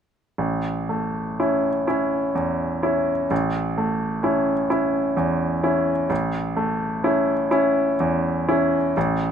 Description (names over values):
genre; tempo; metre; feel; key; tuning
classical; 42 BPM (dotted quarters); 6/8; rubato; A major; A4 = 442 Hz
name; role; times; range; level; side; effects
bright baby grand piano; accompaniment; 0.4-9.3 s; A1 to E4; -20 LUFS; equal; none
room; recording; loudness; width
moderate large studio reverb, RT60 0.9 s; none; -20 LUFS; side -8 dB against mid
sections
0.4-9.3 A section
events
none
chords
0.4 A